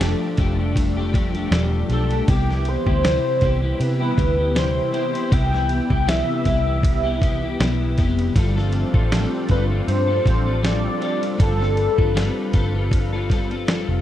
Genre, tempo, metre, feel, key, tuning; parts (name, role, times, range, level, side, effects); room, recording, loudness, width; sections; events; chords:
indie pop, bedroom pop; 79 BPM; 4/4; swing 55% on 16ths; C major; A4 = 439 Hz
warm velvety synth lead; melody; 0.0-12.9 s; G4 to G5; -24 LUFS; equal; wide subtle chorus, tape echo
electric guitar at the edge of break-up; accompaniment; 0.0-14.0 s; C3 to A4; -25 LUFS; left 4 dB; ensemble chorus, warbly pitch drift
lush unison pad; sustained chords; 0.0-14.0 s; E3 to B4; -30 LUFS; right 2 dB; chorus
vintage muted fingered electric bass; bass; 0.0-14.0 s; E1 to C3; -22 LUFS; equal
dusty soul sampler-style drum kit; drums; 0.0-13.9 s; kick drum, ride cymbal, snare drum; -21 LUFS; equal
digital ambience; dry, close 1970s-style studio recording; -18 LUFS; side -12 dB against mid
0.0-14.0 A section
0.0 F69; 2.3 Cmaj7; 8.4 G9sus4